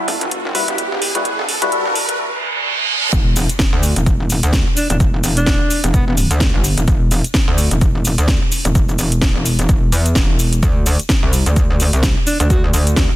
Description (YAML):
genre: bass house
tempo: 128 BPM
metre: 4/4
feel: swing 57% on 16ths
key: E minor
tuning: A4 = 440 Hz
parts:
  - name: riser, reverse cymbal and impact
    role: sound effects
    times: 0.0-5.0 s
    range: none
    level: -21 LUFS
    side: right 2 dB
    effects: none
  - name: metallic wobble bass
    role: bass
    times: 0.1-13.1 s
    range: E1 to E2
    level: -17 LUFS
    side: equal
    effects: chorus, sidechain pumping, high-pass filter
  - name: house drum kit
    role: drums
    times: 0.1-13.1 s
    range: hi-hat, shaker, snare drum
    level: -20 LUFS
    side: equal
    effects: overdrive
  - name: percussive organ stab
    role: stabs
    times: 0.5-1.8 s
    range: G3 to B4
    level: -20 LUFS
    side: left 2 dB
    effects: lush chorus, sidechain pumping, digital delay
  - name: electronic kick drum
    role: drums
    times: 3.1-13.1 s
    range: none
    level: -17 LUFS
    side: equal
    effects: overdrive
  - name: breathy alto saxophone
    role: melody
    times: 4.8-6.1, 12.3-12.6 s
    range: B3 to F#4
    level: -22 LUFS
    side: equal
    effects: digital delay
room: light reverb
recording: dense, heavily limited modern master, high-pass filter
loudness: -13 LUFS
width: side -14 dB against mid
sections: 0.0-3.1 A section; 3.1-13.2 B section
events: build-up 0.0-3.1; riser 0.0-2.2; filter sweep 0.0-3.1; reverse cymbal 2.2-3.1; drop 3.1-13.2; impact 3.1-5.0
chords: 0.0 Emadd9; 3.1 N.C.